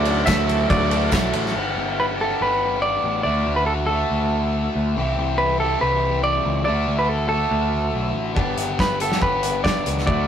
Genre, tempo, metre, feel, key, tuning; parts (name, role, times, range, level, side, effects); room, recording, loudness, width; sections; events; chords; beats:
indie rock; 141 BPM; 4/4; straight; A4 = 440 Hz
semi-hollow electric guitar; melody; 0.0-10.3 s; A4 to E5; -22 LUFS; right 1 dB; slapback echo
distorted electric guitar; riff; 0.0-10.3 s; E3 to G4; -25 LUFS; left 2 dB; distortion
electric guitar through a small old amp; riff; 0.0-1.5, 8.4-10.3 s; D3 to F#4; -29 LUFS; right 3 dB
growling picked electric bass; bass; 0.0-10.3 s; G1 to D2; -25 LUFS; equal; overdrive
loose indie drum kit; drums; 0.1-1.5, 8.4-10.2 s; hi-hat, kick drum, ride cymbal, snare drum; -24 LUFS; equal
tambourine; percussion; 0.3-1.2 s; -36 LUFS; right 5 dB
light reverb; rough rehearsal-room recording; -18 LUFS; side -9 dB against mid
0.0-1.5 A section; 1.5-10.3 B section
0.0 D; 1.5 G; 3.2 D; 5.0 Cmaj7; 6.7 D; 8.4 Gmaj7
0.26 0.69 1.11 | 1.54 1.97 2.40 2.82 | 3.25 3.68 4.10 4.53 | 4.96 5.38 5.81 6.24 | 6.66 7.09 7.52 7.94 | 8.37 8.80 9.22 9.65 | 10.08